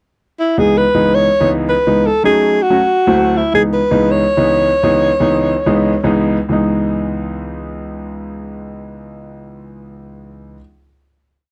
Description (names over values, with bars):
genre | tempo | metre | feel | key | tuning
jazz | 162 BPM | 4/4 | straight | C# minor | A4 = 438 Hz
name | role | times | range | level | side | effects
breathy alto saxophone | melody | 0.4-6.1 s | E4 to C#5 | -16 LUFS | equal | none
warm concert grand piano | accompaniment | 0.6-10.6 s | C#2 to F#4 | -19 LUFS | equal | none
room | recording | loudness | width
light reverb | dry, close 1970s-style studio recording | -14 LUFS | mono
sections
0.0-0.6 pickup bar; 0.6-6.5 A section; 6.5-9.5 final chord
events
none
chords
0.0 N.C.; 0.6 C#m9; 2.1 D#m7b5; 2.8 D9; 3.5 C#m9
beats
0.21 | 0.58 0.95 1.32 1.69 | 2.06 2.43 2.80 3.17 | 3.54 3.91 4.28 4.65 | 5.02 5.39 5.76 6.13 | 6.50 6.87 7.24 7.61 | 7.98 8.35 8.72 9.09